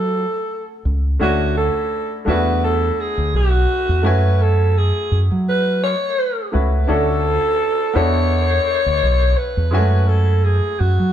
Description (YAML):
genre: lush 1970s-style soul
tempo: 84 BPM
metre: 4/4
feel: swing 54% on 16ths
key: F# minor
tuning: A4 = 440 Hz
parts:
  - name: growling alto saxophone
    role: melody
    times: 0.0-11.1 s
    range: F#4 to C#5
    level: -20 LUFS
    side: equal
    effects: none
  - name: clear baby grand piano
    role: accompaniment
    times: 0.0-11.1 s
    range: G#3 to G#5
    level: -23 LUFS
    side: left 1 dB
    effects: none
  - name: deep dub fingered electric bass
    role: bass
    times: 0.0-11.1 s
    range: B1 to F#3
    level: -17 LUFS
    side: equal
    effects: none
room: moderate stone room reverb, RT60 1.3 s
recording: band playing live in one room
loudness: -15 LUFS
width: side -10 dB against mid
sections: 0.0-11.1 A section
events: none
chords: 0.0 F#m9; 1.2 Dmaj7; 2.3 E9sus4; 4.0 F#m9; 6.9 Dmaj7; 8.0 E9sus4; 9.7 F#m9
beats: 0.49 | 1.20 1.91 2.62 3.33 | 4.04 4.75 5.47 6.18 | 6.89 7.60 8.31 9.02 | 9.73 10.44